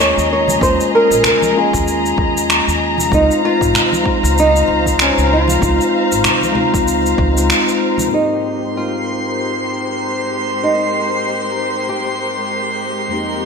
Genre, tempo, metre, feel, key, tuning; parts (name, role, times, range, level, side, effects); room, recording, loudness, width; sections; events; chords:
sunset chillout; 96 BPM; 4/4; swing 58% on 16ths; A4 = 438 Hz
flamenco guitar; melody; 0.0-12.8 s; Db4 to Db5; -17 LUFS; equal; digital delay, slapback echo
mellow tine electric piano; accompaniment; 0.0-13.5 s; F2 to C5; -20 LUFS; left 1 dB; auto-pan, tape echo, slapback echo
muted studio string section; sustained chords; 0.0-13.5 s; F3 to Bb5; -20 LUFS; left 2 dB; low-pass filter
upright bass; bass; 0.0-7.5 s; Ab1 to Eb2; -20 LUFS; right 1 dB
electronic shaker and finger snaps; drums; 0.0-8.1 s; -18 LUFS; right 1 dB; overdrive
congas; percussion; 0.5-8.1 s; -28 LUFS; right 5 dB
electronic kick drum; drums; 0.6-7.3 s; -21 LUFS; right 1 dB; overdrive
drifting glass-harmonics texture; texture; 8.6-13.5 s; C6 to C7; -22 LUFS; right 2 dB; chorus, built-in reverb
riser; sound effects; 13.1-13.5 s; barely audible
wet concert hall reverb, RT60 1.9 s, small room ambience; big arena sound; -13 LUFS; side -5 dB against mid
0.0-8.1 A section; 8.1-13.5 B section
filter sweep on string section 8.1-13.5
0.0 Eb7sus4; 3.1 Dbmaj7; 8.1 Abmaj9